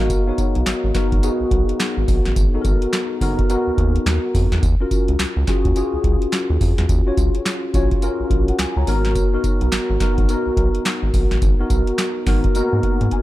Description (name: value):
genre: R&B, new jack swing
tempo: 106 BPM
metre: 4/4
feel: swing 62% on 16ths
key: G# dorian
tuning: A4 = 440 Hz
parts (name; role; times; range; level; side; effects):
- mellow tine electric piano; accompaniment; 0.0-13.2 s; A#3 to A#5; -21 LUFS; left 1 dB; ensemble chorus
- round analog bass; bass; 0.0-13.1 s; F#1 to G#2; -20 LUFS; equal; none
- booming analog drum machine; drums; 0.1-13.2 s; handclaps, hi-hat, kick drum, snare drum, tambourine; -20 LUFS; equal; none
room: digital ambience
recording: dark, warm production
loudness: -16 LUFS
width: side -16 dB against mid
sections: 0.0-13.2 A section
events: tine electric piano fill 12.6-13.2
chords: 0.0 G#m7; 4.6 D#m9 (rootless); 8.9 G#m7